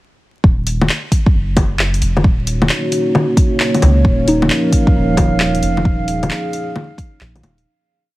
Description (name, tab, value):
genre	future garage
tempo	133 BPM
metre	4/4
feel	swing 65% on 16ths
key	Eb minor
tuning	A4 = 440 Hz
part	soft dub sub bass	bass	0.4-7.6 s	Eb1 to Db2	-17 LUFS	equal	sidechain pumping
part	electronic kick drum	drums	0.4-7.1 s	none	-13 LUFS	equal	small room reverb
part	deep house drum kit	drums	0.7-7.6 s	bongos, handclaps, hi-hat	-18 LUFS	left 1 dB	small room reverb
part	dark analog pad	sustained chords	2.2-7.6 s	F3 to Db5	-18 LUFS	right 1 dB	wide subtle chorus, sidechain pumping
part	drifting glass-harmonics texture	texture	4.6-7.7 s	F5	-25 LUFS	right 6 dB	chorus, built-in reverb
part	muted felt-like synth keys	accompaniment	4.3-7.7 s	Eb4	-21 LUFS	left 1 dB	chorus, vintage 12-bit sampler grit, sidechain pumping, digital delay
room	little or no reverb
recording	heavily compressed radio sound, vinyl crackle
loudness	-12 LUFS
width	side -18 dB against mid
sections	0.4-7.7 groove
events	fade-out 5.3-7.7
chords	0.4 Ebm7; 4.0 Bbm/Eb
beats	| 0.44 0.89 1.34 1.79 | 2.25 2.70 3.15 3.60 | 4.05 4.50 4.95 5.40 | 5.85 6.30 6.76 7.21